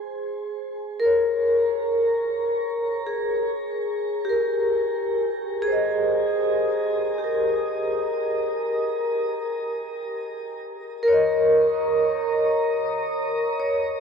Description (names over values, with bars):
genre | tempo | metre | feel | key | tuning
ambient | 70 BPM | 3/4 | straight | Ab major | A4 = 440 Hz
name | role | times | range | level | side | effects
vibraphone with medium hard mallets | solo | 0.0-14.0 s | G4 to Eb5 | -21 LUFS | equal | tape echo
room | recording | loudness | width
wet shimmer reverb, RT60 7.7 s | worn, warbling old tape, cassette tape, warbly pitch drift | -21 LUFS | side -6 dB against mid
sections
0.0-3.6 A section; 3.6-14.0 B section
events
none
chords
0.0 Absus24; 3.6 Abmaj9; 8.8 Bbmadd11